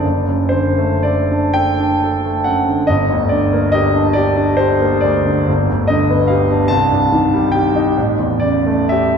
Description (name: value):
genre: classical, romantic nocturne for solo piano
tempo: 37-50 BPM (dotted quarters)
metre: 12/8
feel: rubato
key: unclear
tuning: A4 = 440 Hz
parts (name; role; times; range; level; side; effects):
- clear concert grand piano; solo; 0.0-9.2 s; F#1 to A5; -13 LUFS; equal; none
room: wet church reverb, RT60 2.9 s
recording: minimal, uncompressed stereo recording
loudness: -13 LUFS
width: side -6 dB against mid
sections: 0.0-9.2 A section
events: none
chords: 0.0 D/F#; 2.9 Gm; 5.5 G; 6.7 Cm; 8.0 A7